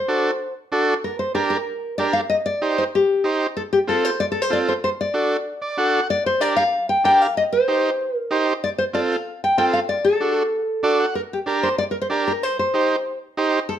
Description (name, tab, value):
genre	latin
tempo	190 BPM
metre	4/4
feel	straight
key	G minor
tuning	A4 = 441 Hz
part	nylon-string guitar	melody	0.0-13.7 s	G4 to G5	-20 LUFS	left 2 dB	none
part	combo organ	accompaniment	0.1-13.6 s	C4 to F#5	-21 LUFS	right 2 dB	none
room	wet large studio reverb, RT60 0.9 s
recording	none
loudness	-18 LUFS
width	side -10 dB against mid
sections	0.0-13.8 A section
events	transistor combo organ fill 5.5-6.1, 10.7-11.2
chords	0.0 D7; 1.0 Gm; 2.3 Cm; 3.6 F; 4.8 D; 6.1 Gm; 7.4 Cm; 8.6 F; 9.9 D; 11.2 Gm; 12.4 Cm